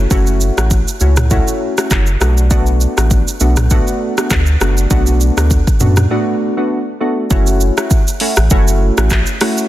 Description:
afrobeats; 100 BPM; 4/4; swing 55% on 16ths; B minor; A4 = 442 Hz
glassy digital keys; accompaniment; 0.0-9.6 s; A3 to F#4; -18 LUFS; equal; chorus
warm sub bass; bass; 0.0-9.2 s; F#1 to F#2; -13 LUFS; equal
afro-pop drum kit; drums; 0.1-9.7 s; handclaps, hi-hat, kick drum, rim click, shaker, toms; -15 LUFS; equal
digital ambience; dense, heavily limited modern master; -11 LUFS; side -14 dB against mid
0.0-7.3 A section; 7.3-9.7 B section
break 6.1-7.3
0.0 F#m7; 2.2 Bm7; 7.3 F#m7
| 0.11 0.71 1.31 1.91 | 2.51 3.11 3.71 4.31 | 4.91 5.51 6.11 6.71 | 7.31 7.91 8.51 9.11

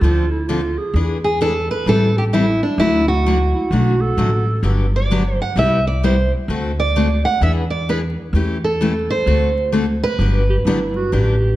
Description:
acoustic string swing (jazz manouche); 130 BPM; 4/4; swing 63% on 8ths; A4 = 436 Hz
picked steel-string acoustic guitar; melody; 0.0-11.6 s; D4 to F#5; -20 LUFS; right 2 dB
warm clarinet; second line; 0.0-4.8, 10.5-11.6 s; E4 to A4; -23 LUFS; right 3 dB
picked steel-string acoustic guitar; accompaniment; 0.0-11.3 s; C3 to A4; -21 LUFS; left 2 dB
upright bass; bass; 0.0-11.5 s; G1 to E2; -19 LUFS; equal
moderate recital hall reverb, RT60 1.6 s; dark, warm production, vinyl crackle; -15 LUFS; side -15 dB against mid
0.0-11.6 A section
0.0 Dm7; 0.9 E7; 1.9 Am7; 2.8 D; 4.6 Gmaj7; 5.6 Cmaj7; 6.5 D7; 7.4 E7; 8.3 A7/E; 9.3 D7; 10.2 Gmaj7
0.02 0.48 | 0.94 1.40 1.86 2.33 | 2.79 3.25 3.71 4.17 | 4.63 5.10 5.56 6.02 | 6.49 6.95 7.41 7.88 | 8.34 8.80 9.27 9.73 | 10.20 10.66 11.12

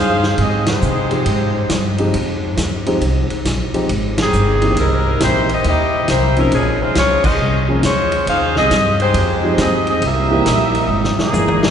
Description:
jazz, big band swing; 137 BPM; 4/4; swing 65% on 8ths; F minor; A4 = 440 Hz
dark saxophone section; melody; 0.0-11.3 s; Eb3 to F5; -17 LUFS; equal
upright bass; bass; 0.0-11.7 s; G1 to C3; -19 LUFS; equal
vintage drum kit; drums; 0.2-11.7 s; crash cymbal, hi-hat, kick drum, ride cymbal, snare drum, toms; -22 LUFS; equal
warm grand piano; accompaniment; 1.1-10.5 s; E3 to Ab4; -22 LUFS; equal
bright trombone section; second line; 10.0-11.7 s; Bb2 to E4; -21 LUFS; right 4 dB
clear trumpet section; melody; 11.2-11.7 s; Bb3 to Ab4; -18 LUFS; left 1 dB
wet cathedral reverb, RT60 5.7 s; recorded in a church or concert hall, nothing above 10.4 kHz; -13 LUFS; side -8 dB against mid
0.0-11.7 A section
band accent 0.6, 4.1, 7.2; drum fill 10.9-11.7
0.0 Fm9; 4.8 C7#9; 6.5 Bbm9; 8.3 Fm9; 10.0 C7#9
0.38 0.82 | 1.26 1.70 2.14 2.58 | 3.02 3.45 3.89 4.33 | 4.77 5.21 5.64 6.08 | 6.52 6.96 7.39 7.83 | 8.27 8.71 9.15 9.58 | 10.02 10.46 10.89 11.33

